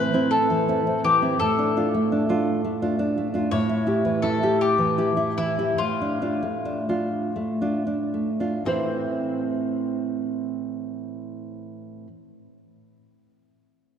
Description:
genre	romantic duo for mandolin and classical guitar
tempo	37-57 BPM (dotted quarters)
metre	6/8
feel	rubato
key	A minor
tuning	A4 = 440 Hz
part	mandolin	melody	0.0-12.1 s	C4 to C#5	-25 LUFS	left 4 dB	none
part	nylon-string guitar	accompaniment	0.0-12.1 s	A2 to C5	-23 LUFS	right 1 dB	none
room	wet church reverb, RT60 3.6 s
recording	recorded in a church or concert hall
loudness	-21 LUFS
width	side -8 dB against mid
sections	0.0-8.7 A section; 8.7-14.0 B section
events	slowing down 2.5-8.7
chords	0.0 Am; 1.4 Dm/A; 3.5 A7; 5.8 Dm/A; 8.7 Am

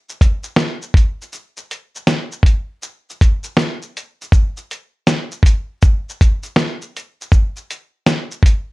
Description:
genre	hip hop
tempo	80 BPM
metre	4/4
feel	swing 66% on 16ths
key	none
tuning	none
part	dusty soul sampler-style drum kit	drums	0.1-8.7 s	hi-hat, kick drum, shaker, snare drum	-14 LUFS	equal	none
room	little or no reverb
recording	none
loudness	-15 LUFS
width	side -22 dB against mid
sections	0.0-4.3 A section; 4.3-8.7 B section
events	none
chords	none

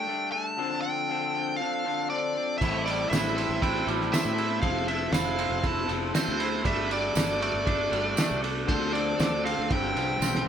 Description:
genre	indie rock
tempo	118 BPM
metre	4/4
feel	straight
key	unclear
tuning	A4 = 441 Hz
part	nasal lead guitar with a parked wah	melody	0.0-10.4 s	C5 to A5	-30 LUFS	right 2 dB	overdrive
part	electric guitar through a small old amp	riff	0.0-10.5 s	G2 to A4	-31 LUFS	left 7 dB	none
part	twangy electric guitar	riff	2.6-10.5 s	G2 to E4	-33 LUFS	right 9 dB	none
part	overdriven fingered electric bass	bass	2.6-10.5 s	F1 to A2	-34 LUFS	equal	none
part	cloth-damped thuddy drum kit	drums	2.6-10.5 s	crash cymbal, kick drum, ride cymbal, snare drum	-28 LUFS	right 1 dB	none
part	tambourine	percussion	3.1-10.3 s	none	-39 LUFS	right 9 dB	none
room	moderate studio reverb, RT60 0.5 s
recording	band playing live in one room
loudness	-24 LUFS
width	side -8 dB against mid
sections	0.0-10.5 A section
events	drum fill 10.2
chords	0.0 Gsus2; 0.6 Dm7; 2.6 Am7; 4.6 Fmaj7; 6.7 Gsus2; 8.7 Dm7; 9.7 G7sus4

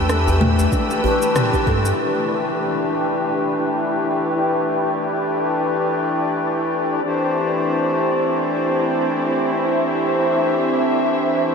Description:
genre	organic downtempo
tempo	95 BPM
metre	4/4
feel	swing 57% on 16ths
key	unclear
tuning	A4 = 440 Hz
part	hand-pumped harmonium	accompaniment	0.0-11.5 s	E3 to C5	-20 LUFS	left 2 dB	sidechain pumping, low-pass filter, ping-pong delay
part	dark studio string section	sustained chords	0.0-11.5 s	C4 to E6	-22 LUFS	right 1 dB	sidechain pumping, low-pass filter
part	kalimba	arpeggios	0.0-1.8 s	A3 to B4	-26 LUFS	left 1 dB	ping-pong delay
part	warm sub bass	bass	0.0-1.9 s	E2 to G2	-19 LUFS	equal	sidechain pumping
part	deep house drum kit	drums	0.1-11.5 s	rim click, shaker, toms	-28 LUFS	equal	low-pass filter on perc, studio reverb, low-pass filter on snare, low-pass filter on toms
part	djembe	percussion	0.3-1.8 s	none	-30 LUFS	equal	none
part	electronic kick drum	drums	0.7-1.8 s	none	-22 LUFS	equal	overdrive, studio reverb
room	wet huge ambient reverb, RT60 7.6 s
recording	dreamy mix soaked in reverb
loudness	-17 LUFS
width	side -5 dB against mid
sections	0.0-2.0 A section; 2.0-11.5 B section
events	band accent 1.4-1.7; filter sweep on harmonium 2.0-11.5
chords	0.0 Em7; 7.0 Dsus2

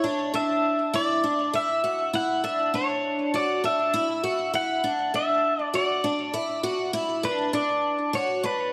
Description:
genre	dream pop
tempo	100 BPM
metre	4/4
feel	straight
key	D major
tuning	A4 = 440 Hz
part	pedal steel guitar	melody	0.0-8.7 s	B4 to F#5	-27 LUFS	equal	digital delay
part	picked twelve-string acoustic guitar	arpeggios	0.0-8.7 s	D4 to F#4	-30 LUFS	equal	analog chorus, digital delay
room	wet scoring stage reverb, RT60 1.6 s, small room reverb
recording	none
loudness	-25 LUFS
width	mono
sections	0.0-8.7 A section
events	none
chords	0.0 Dadd9

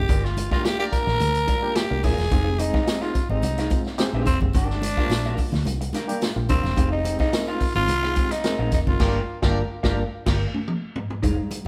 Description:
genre	funk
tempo	108 BPM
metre	4/4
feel	straight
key	unclear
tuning	A4 = 442 Hz
part	growling tenor saxophone	melody	0.0-9.4 s	C4 to Bb4	-28 LUFS	equal	none
part	barky reed electric piano	stabs	0.0-11.7 s	G3 to Bb4	-33 LUFS	equal	overdrive, tremolo
part	vintage muted fingered electric bass	bass	0.0-11.4 s	Eb1 to D2	-28 LUFS	equal	none
part	electric guitar through a small old amp	accompaniment	0.1-11.6 s	D4 to G5	-34 LUFS	equal	none
part	vintage drum kit	drums	0.1-11.6 s	crash cymbal, hi-hat, kick drum, snare drum, toms	-27 LUFS	equal	none
part	congas	percussion	0.1-11.7 s	none	-38 LUFS	equal	none
part	tambourine	percussion	0.1-11.7 s	none	-49 LUFS	equal	none
part	bright horn section	second line	0.8-1.0, 9.0-10.4 s	G4 to D5	-38 LUFS	equal	none
room	moderate stone room reverb, RT60 1.2 s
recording	band playing live in one room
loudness	-23 LUFS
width	mono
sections	0.0-11.2 A section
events	band accent 0.1-2.3, 9.0-11.2; drum fill 10.1-11.2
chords	0.1 Gm7; 2.3 Fm7; 4.5 Gm7; 6.8 Fm7; 9.0 Gm7

